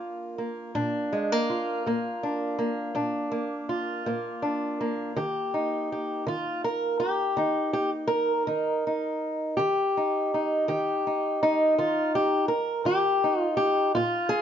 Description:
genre	acoustic country blues, solo or duo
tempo	54 BPM (dotted quarters)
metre	12/8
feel	straight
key	unclear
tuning	A4 = 440 Hz
part	fingerpicked old ladder-braced acoustic guitar	solo	0.0-14.4 s	Bb2 to Bb4	-24 LUFS	equal	none
room	moderate studio reverb, RT60 0.6 s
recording	nothing above 7.6 kHz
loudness	-24 LUFS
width	side -9 dB against mid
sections	0.0-14.4 A section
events	none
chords	0.0 Bb; 5.2 Eb

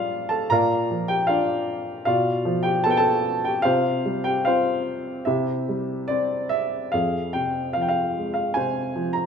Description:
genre	classical, lyrical solo piano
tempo	71-78 BPM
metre	4/4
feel	rubato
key	unclear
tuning	A4 = 440 Hz
part	dark baby grand piano	solo	0.0-9.3 s	F2 to Bb5	-21 LUFS	equal	none
room	moderate recital hall reverb, RT60 1.7 s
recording	minimal, uncompressed stereo recording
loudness	-21 LUFS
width	side -7 dB against mid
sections	0.0-6.9 A section; 6.9-9.3 B section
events	none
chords	0.0 Gm7/Bb; 0.5 Bb; 2.1 G7/B; 3.7 Csus4; 5.3 C; 6.9 Fm

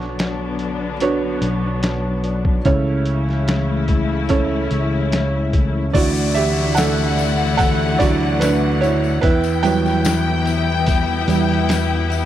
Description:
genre	pop ballad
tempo	73 BPM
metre	4/4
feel	straight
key	D major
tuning	A4 = 438 Hz
part	felt-muted upright piano	accompaniment	0.0-12.3 s	C#3 to G5	-21 LUFS	right 5 dB	none
part	muted studio string section	sustained chords	0.0-12.3 s	C#3 to E4	-24 LUFS	left 7 dB	none
part	fingered electric bass	bass	0.0-12.3 s	B1 to E2	-21 LUFS	left 1 dB	none
part	trip hop sampler-style drum kit	drums	0.0-12.3 s	crash cymbal, hi-hat, kick drum, snare drum	-21 LUFS	left 1 dB	none
part	warm studio violin section	second line	5.9-12.3 s	F#5 to G5	-25 LUFS	left 6 dB	none
part	downlifter	sound effects	5.9-12.3 s	none	-31 LUFS	left 4 dB	none
part	tambourine	percussion	6.1-12.3 s	none	-36 LUFS	left 28 dB	none
room	little or no reverb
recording	dry, close 1970s-style studio recording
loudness	-16 LUFS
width	side -12 dB against mid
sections	0.0-5.9 A section; 5.9-12.3 B section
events	felt piano solo 5.9-12.3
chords	0.0 Bmadd9; 2.7 A/C#; 5.9 Dadd9; 9.2 Emadd9

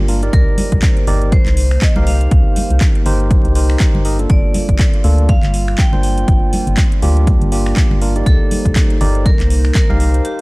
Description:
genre	deep house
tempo	121 BPM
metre	4/4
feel	swing 58% on 16ths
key	G minor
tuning	A4 = 438 Hz
part	hollow soft pad	sustained chords	0.0-10.4 s	G3 to C5	-28 LUFS	left 1 dB	chorus, sidechain pumping
part	tine electric piano	stabs	0.0-10.4 s	Bb3 to F5	-22 LUFS	right 1 dB	sidechain pumping, analog delay
part	organ-like FM bass	bass	0.0-10.2 s	G1 to D2	-15 LUFS	equal	sidechain pumping
part	house drum kit	drums	0.1-10.4 s	finger snaps, handclaps, hi-hat	-25 LUFS	equal	overdrive
part	vibraphone with hard mallets	melody	0.3-10.4 s	G4 to G5	-26 LUFS	equal	analog delay
part	electronic kick drum	drums	0.3-9.9 s	none	-13 LUFS	equal	overdrive
part	congas	percussion	0.6-10.0 s	none	-27 LUFS	right 1 dB	none
room	little or no reverb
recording	dry, gritty hardware recording, vinyl crackle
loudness	-11 LUFS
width	side -23 dB against mid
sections	0.0-10.4 A section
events	break 10.2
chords	0.0 Gm7

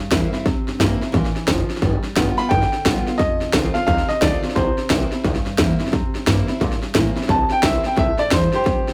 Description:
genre	rockabilly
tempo	175 BPM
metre	4/4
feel	swing 63% on 8ths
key	C mixolydian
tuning	A4 = 440 Hz
part	picked steel-string acoustic guitar	accompaniment	0.0-8.9 s	F2 to F4	-28 LUFS	equal	none
part	upright bass	bass	0.0-8.9 s	F1 to Bb2	-26 LUFS	equal	none
part	techno drum kit	drums	0.1-8.9 s	hi-hat, kick drum, snare drum	-23 LUFS	equal	none
part	bright upright piano	melody	2.4-8.9 s	G4 to B5	-23 LUFS	equal	none
room	light reverb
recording	rough rehearsal-room recording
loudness	-19 LUFS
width	mono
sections	0.0-7.3 A section; 7.3-8.9 B section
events	upright piano solo 7.3-8.9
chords	0.0 C7; 1.8 G7; 3.2 F7; 4.6 C7

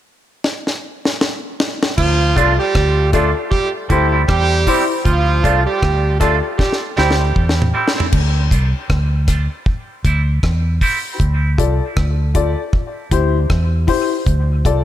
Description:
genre	dub reggae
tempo	78 BPM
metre	4/4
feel	swing 59% on 16ths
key	D minor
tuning	A4 = 438 Hz
part	deep reggae drum kit	drums	0.4-14.8 s	crash cymbal, hi-hat, kick drum, rim click, snare drum, toms	-18 LUFS	equal	none
part	warm horn section	second line	2.0-7.7 s	F3 to A4	-20 LUFS	right 4 dB	high-pass filter, dub echo
part	vintage muted fingered electric bass	bass	2.0-14.8 s	C2 to E2	-16 LUFS	equal	none
part	clean electric guitar	accompaniment	2.4-11.0 s	G3 to F4	-22 LUFS	right 5 dB	spring reverb, high-pass filter, dub echo
part	dark upright piano	stabs	2.4-14.8 s	E4 to D5	-22 LUFS	left 7 dB	high-pass filter, dub echo
room	light reverb, small room reverb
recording	none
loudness	-14 LUFS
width	side -12 dB against mid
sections	0.0-2.0 A section; 2.0-8.1 B section; 8.1-14.8 C section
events	drum fill 0.4-2.0, 6.6-8.1; filter sweep 5.1-11.2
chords	0.0 N.C.; 2.0 Dm; 3.5 C; 5.1 Dm; 6.6 C; 8.1 Dm; 9.7 C; 11.2 Dm; 12.7 C; 14.3 Dm

